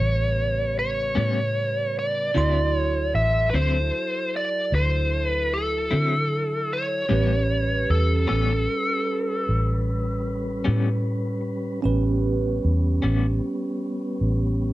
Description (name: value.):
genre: blues.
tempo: 51 BPM (dotted quarters).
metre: 12/8.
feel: straight.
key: A mixolydian.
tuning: A4 = 437 Hz.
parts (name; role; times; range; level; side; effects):
biting lead guitar; melody; 0.0-11.4 s; A4 to E5; -25 LUFS; equal; overdrive, slapback echo, plate reverb.
bell-like tine electric piano; accompaniment; 0.0-14.7 s; B3 to C6; -31 LUFS; right 5 dB; phaser, plate reverb.
mellow tonewheel organ; sustained chords; 0.0-14.7 s; C#3 to B4; -31 LUFS; equal; slow rotary speaker.
vintage muted fingered electric bass; bass; 0.0-14.7 s; A1 to D3; -24 LUFS; equal; none.
electric guitar at the edge of break-up; accompaniment; 1.2-13.3 s; A2 to E4; -28 LUFS; left 4 dB; tremolo.
room: light reverb.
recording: dark, warm production.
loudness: -21 LUFS.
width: side -16 dB against mid.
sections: 0.0-14.7 A section.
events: none.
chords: 0.0 A9; 2.4 D9; 7.1 A9.